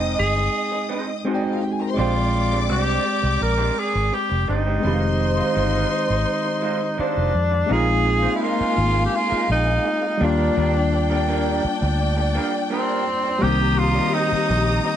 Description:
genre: soul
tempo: 84 BPM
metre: 4/4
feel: straight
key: unclear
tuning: A4 = 440 Hz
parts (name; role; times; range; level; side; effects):
- warm symphonic string section; second line; 0.0-15.0 s; Bb3 to Eb6; -27 LUFS; left 1 dB; none
- tine electric piano; accompaniment; 0.0-15.0 s; Eb3 to G5; -25 LUFS; left 1 dB; medium stereo tremolo
- electric guitar through a small old amp; riff; 0.0-14.9 s; Ab3 to D5; -30 LUFS; right 6 dB; lush chorus
- vintage muted fingered electric bass; bass; 0.0-14.8 s; F1 to F2; -22 LUFS; equal; none
- breathy tenor saxophone; melody; 0.2-15.0 s; C4 to Bb4; -23 LUFS; equal; none
room: small room ambience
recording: nothing above 10.5 kHz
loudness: -18 LUFS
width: side -10 dB against mid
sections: 0.0-7.7 A section; 7.7-15.0 B section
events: none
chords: 0.0 Fm7 (rootless); 2.0 Bb13; 4.8 Fm7; 7.7 Bb7sus4; 10.2 Ebmaj7; 13.4 Cm7

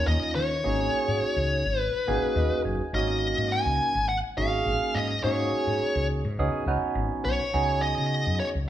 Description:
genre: electric jazz fusion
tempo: 104 BPM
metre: 4/4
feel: straight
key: unclear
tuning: A4 = 440 Hz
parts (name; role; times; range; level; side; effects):
- bluesy overdriven lead guitar; melody; 0.0-8.5 s; Db5 to Ab5; -27 LUFS; left 1 dB; distortion
- barky tine electric piano; accompaniment; 0.0-8.5 s; Bb3 to Ab5; -29 LUFS; right 3 dB; phaser
- woody fretless electric bass; bass; 0.0-8.7 s; Gb1 to Eb3; -29 LUFS; left 1 dB; none
room: moderate large studio reverb, RT60 1.3 s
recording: band playing live in one room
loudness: -24 LUFS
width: side -11 dB against mid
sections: 0.0-8.7 A section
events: tine electric piano fill 1.8-2.9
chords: 0.0 Eb7sus2; 0.6 Ab9sus4; 6.4 Db9sus4

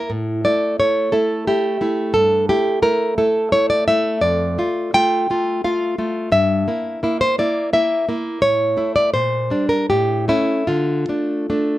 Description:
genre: romantic piece for solo classical guitar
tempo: 74-89 BPM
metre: 3/4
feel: rubato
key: unclear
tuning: A4 = 442 Hz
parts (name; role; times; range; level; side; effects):
- nylon-string guitar; solo; 0.0-11.8 s; F2 to G5; -16 LUFS; equal; none
room: light reverb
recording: none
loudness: -16 LUFS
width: side -15 dB against mid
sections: 0.0-11.8 A section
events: none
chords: 0.1 A5; 2.2 A5/G; 4.2 Dm/F; 6.3 Edim/G; 8.4 A; 9.1 Gm/Bb; 9.9 A7; 10.7 Dm

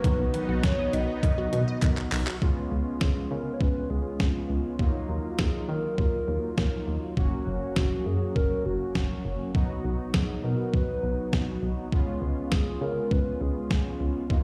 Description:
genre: synth-pop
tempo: 101 BPM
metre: 4/4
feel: straight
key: Db mixolydian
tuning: A4 = 440 Hz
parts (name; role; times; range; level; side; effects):
- hollow clarinet-like synth lead; melody; 0.0-14.0 s; Gb4 to Eb5; -35 LUFS; equal; chorus, slapback echo
- analog synth brass; accompaniment; 0.0-14.4 s; Gb3 to Gb4; -35 LUFS; equal; chorus
- lush unison pad; sustained chords; 0.0-2.4 s; Gb3 to Eb4; -39 LUFS; equal; chorus
- resonant blip pluck; arpeggios; 0.0-2.4 s; Eb3 to Eb5; -38 LUFS; equal; phaser, slapback echo
- solid FM bass; bass; 0.0-14.4 s; Gb1 to Eb3; -31 LUFS; equal; none
- clean 12-bit digital drum machine; drums; 0.0-14.4 s; handclaps, hi-hat, kick drum, snare drum; -28 LUFS; equal; none
room: light reverb, digital ambience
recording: played on a big sound system in a bare room, large studio reverb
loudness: -27 LUFS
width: mono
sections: 0.0-2.4 A section; 2.4-14.4 B section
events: drum fill 1.8-2.4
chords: 0.0 Cb; 2.4 Db7; 4.8 Ebmadd9; 7.2 Gb; 9.5 Cb; 11.9 Db7

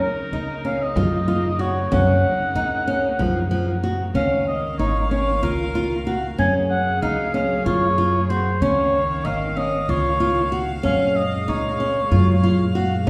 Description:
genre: contemporary instrumental, chamber music in an uneven meter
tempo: 188 BPM (eighths)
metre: 7/8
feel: straight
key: Gb major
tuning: A4 = 440 Hz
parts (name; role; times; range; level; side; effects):
- warm oboe; melody; 0.0-13.1 s; Bb4 to Ab5; -27 LUFS; equal; none
- bright chamber string section; sustained chords; 0.0-13.1 s; Bb2 to F5; -33 LUFS; equal; none
- flamenco guitar; arpeggios; 0.0-13.1 s; F3 to Gb4; -25 LUFS; equal; none
- frame drum; percussion; 0.0-3.5, 13.1 s; none; -30 LUFS; equal; none
- upright bass; bass; 0.3-13.1 s; Ab1 to Gb2; -26 LUFS; equal; none
room: wet recital hall reverb, RT60 1.5 s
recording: heard from further back in the room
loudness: -21 LUFS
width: mono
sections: 0.0-4.2 A section; 4.2-13.1 B section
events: none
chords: 0.0 Gbmaj7; 4.2 Db69; 6.4 Gbmaj9; 8.6 Db69; 10.8 Gbmaj9

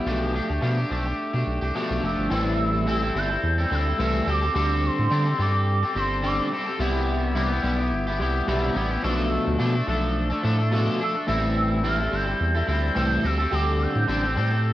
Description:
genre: indie pop, bedroom pop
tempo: 107 BPM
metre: 4/4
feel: swing 55% on 16ths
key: A minor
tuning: A4 = 440 Hz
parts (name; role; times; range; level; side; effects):
- electric guitar at the edge of break-up; accompaniment; 0.0-14.7 s; A2 to A4; -24 LUFS; left 1 dB; analog chorus, vibrato effect, cassette tape
- round analog bass; bass; 0.1-14.7 s; F1 to D3; -25 LUFS; equal; none
- warbly nostalgic lead; melody; 2.0-6.7, 11.0-14.7 s; C6 to G6; -28 LUFS; right 1 dB; tremolo, analog chorus, cassette tape
room: light reverb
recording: home recording on cassette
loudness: -21 LUFS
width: side -14 dB against mid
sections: 0.0-2.3 A section; 2.3-14.7 B section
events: none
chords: 0.1 G9/B; 2.3 Am7; 4.3 D7sus4; 6.8 Cmaj7; 9.0 Bm7b5; 11.3 Am7; 13.2 D7sus4

